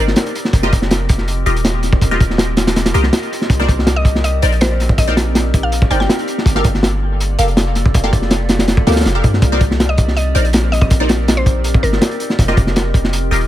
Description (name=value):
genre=drum and bass, jungle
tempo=162 BPM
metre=4/4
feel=straight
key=C dorian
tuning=A4 = 441 Hz
part: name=mallet-like synth pluck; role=melody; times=0.0-0.5, 4.0-6.1, 9.9-12.4 s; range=Bb4 to G5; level=-24 LUFS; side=left 1 dB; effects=chorus, cassette tape, dub echo
part: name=warbly tape-like pad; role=sustained chords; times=0.0-13.5 s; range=Bb3 to D5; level=-24 LUFS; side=equal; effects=chorus, built-in reverb, phaser
part: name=filtered dub chord stab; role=stabs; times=0.0-13.4 s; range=Eb4 to F5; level=-22 LUFS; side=left 1 dB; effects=phaser, analog chorus, dub echo
part: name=long sustained 808-style bass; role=bass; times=0.0-13.5 s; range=Eb1 to G2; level=-17 LUFS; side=equal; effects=none
part: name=crunchy breakbeat drum kit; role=drums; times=0.1-13.5 s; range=hi-hat, kick drum, snare drum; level=-14 LUFS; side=equal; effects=none
room=small room ambience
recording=none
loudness=-12 LUFS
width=side -13 dB against mid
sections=0.0-13.5 A section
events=none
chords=0.0 Cm9; 0.5 F9sus4; 3.5 Cm9; 6.5 Gm9; 9.4 Cm9; 12.4 F9sus4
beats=0.17 | 0.54 0.91 1.28 1.65 | 2.02 2.39 2.76 3.13 | 3.50 3.87 4.24 4.61 | 4.98 5.35 5.72 6.09 | 6.46 6.83 7.20 7.57 | 7.94 8.31 8.69 9.05 | 9.43 9.80 10.17 10.54 | 10.91 11.28 11.65 12.02 | 12.39 12.76 13.13